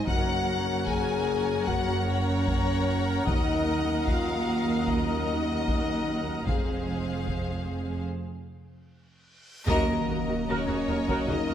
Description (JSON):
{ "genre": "cinematic, epic orchestral film score", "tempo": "75 BPM", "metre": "4/4", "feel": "straight", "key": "Eb dorian", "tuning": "A4 = 443 Hz", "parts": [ { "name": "warm symphonic violin section", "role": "melody", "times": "0.0-11.5 s", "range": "Ab4 to Ab5", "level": "-34 LUFS", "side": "left 4 dB", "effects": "none" }, { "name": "warm symphonic violin section", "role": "second line", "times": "0.0-11.5 s", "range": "Eb5 to Bb5", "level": "-35 LUFS", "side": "left 2 dB", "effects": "none" }, { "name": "warm symphonic viola section", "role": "accompaniment", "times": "0.0-11.5 s", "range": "Gb4 to Eb5", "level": "-36 LUFS", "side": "equal", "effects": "none" }, { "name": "warm French horn section", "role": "sustained chords", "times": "0.0-11.5 s", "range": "Ab3 to Ab4", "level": "-32 LUFS", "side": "left 2 dB", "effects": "none" }, { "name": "rich symphonic cello section", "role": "bass", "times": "0.0-11.5 s", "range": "Eb2 to Gb2", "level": "-33 LUFS", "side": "right 2 dB", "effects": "none" }, { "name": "rich symphonic double bass section", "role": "bass", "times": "0.0-11.4 s", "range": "F1 to Eb2", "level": "-34 LUFS", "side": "right 2 dB", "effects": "none" }, { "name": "dark trombone section", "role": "sustained chords", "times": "0.1-11.5 s", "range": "F2 to C4", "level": "-34 LUFS", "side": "right 1 dB", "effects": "none" }, { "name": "taiko ensemble", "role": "drums", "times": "0.1-11.5 s", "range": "none", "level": "-32 LUFS", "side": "equal", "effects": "none" }, { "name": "reverse cymbal and sub drop", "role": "sound effects", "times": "9.3-11.5 s", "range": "none", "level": "-40 LUFS", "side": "equal", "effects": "none" }, { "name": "warm symphonic string section", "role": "sustained chords", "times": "9.7-11.5 s", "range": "Bb3 to Eb5", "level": "-35 LUFS", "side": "left 1 dB", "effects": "none" }, { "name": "timpani", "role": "percussion", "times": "9.7-10.8 s", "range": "Eb3", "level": "-36 LUFS", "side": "right 2 dB", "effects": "none" } ], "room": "moderate scoring stage reverb, RT60 2.0 s", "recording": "none", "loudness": "-25 LUFS", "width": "side -10 dB against mid", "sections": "0.0-9.7 A section; 9.7-11.5 B section", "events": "break 8.1-9.7; reverse cymbal 9.3-9.7; band accent 9.7-10.5; impact 9.7-11.5", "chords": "0.1 Gb; 3.3 Ebm; 6.5 Fm; 9.7 Ebm" }